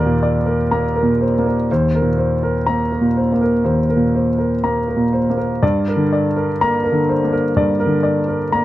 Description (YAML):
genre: neoclassical minimalist piano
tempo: 62 BPM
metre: 4/4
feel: rubato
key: unclear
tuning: A4 = 445 Hz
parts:
  - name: warm concert grand piano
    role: solo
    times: 0.0-8.6 s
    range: Eb2 to Bb5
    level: -15 LUFS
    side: equal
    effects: none
room: little or no reverb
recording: dry, close 1970s-style studio recording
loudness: -15 LUFS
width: side -15 dB against mid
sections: 0.0-8.6 A section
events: none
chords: 0.0 Eb5; 1.7 Cm7/Eb; 5.6 Gm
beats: 0.71 | 1.69 2.67 3.65 4.63 | 5.62 6.59 7.55 8.52